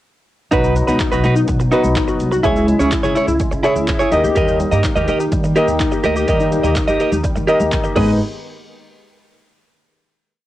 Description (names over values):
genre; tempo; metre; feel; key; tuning
dance-pop; 125 BPM; 4/4; straight; unclear; A4 = 441 Hz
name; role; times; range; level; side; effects
dark baby grand piano; accompaniment; 0.5-8.2 s; A#3 to E5; -20 LUFS; left 2 dB; sidechain pumping, cassette tape, plate reverb
soft string machine; sustained chords; 0.5-8.2 s; C#3 to B4; -26 LUFS; equal; ensemble chorus, sidechain pumping, cassette tape, plate reverb
glassy wavetable pluck; arpeggios; 0.5-8.2 s; F#3 to G#4; -23 LUFS; left 2 dB; chorus, sidechain pumping, cassette tape, tape echo, plate reverb
direct-recorded clean electric guitar; riff; 0.5-8.1 s; D#4 to D#5; -18 LUFS; right 2 dB; wide subtle chorus, cassette tape
upright bass; bass; 0.5-8.2 s; G#1 to D#3; -20 LUFS; equal; sidechain pumping
punchy analog drum machine; drums; 0.5-8.1 s; crash cymbal, handclaps, hi-hat, kick drum, shaker; -22 LUFS; equal; cassette tape
room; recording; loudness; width
light reverb; home recording on cassette; -14 LUFS; side -14 dB against mid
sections
0.5-8.2 pre-chorus; 8.2-10.1 final hit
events
none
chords
0.5 B; 2.4 C#m; 4.1 D#; 8.0 G#m; 8.2 N.C.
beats
| 0.52 1.00 1.48 1.96 | 2.44 2.92 3.40 3.88 | 4.36 4.84 5.32 5.80 | 6.28 6.76 7.24 7.72